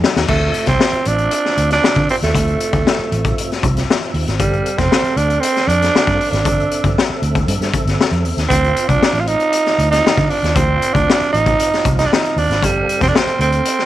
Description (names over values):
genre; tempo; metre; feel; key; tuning
funk; 117 BPM; 4/4; straight; unclear; A4 = 440 Hz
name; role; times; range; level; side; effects
percussive tonewheel organ; sustained chords; 0.0-13.9 s; G3 to F5; -26 LUFS; right 1 dB; chorus vibrato, fast rotary speaker
raw garage drum kit; drums; 0.0-13.9 s; crash cymbal, hi-hat, kick drum, snare drum; -18 LUFS; left 3 dB; none
vintage muted fingered electric bass; bass; 0.2-13.6 s; F1 to D3; -18 LUFS; right 1 dB; none
growling tenor saxophone; melody; 0.3-13.9 s; G3 to F4; -16 LUFS; right 3 dB; none
room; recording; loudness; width
light reverb, small room ambience; 1960s-style stereo; -13 LUFS; side -13 dB against mid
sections
0.3-13.9 A section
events
drum fill 0.0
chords
0.3 Dm9; 4.4 G9sus4; 8.5 Dm7; 12.6 G9sus4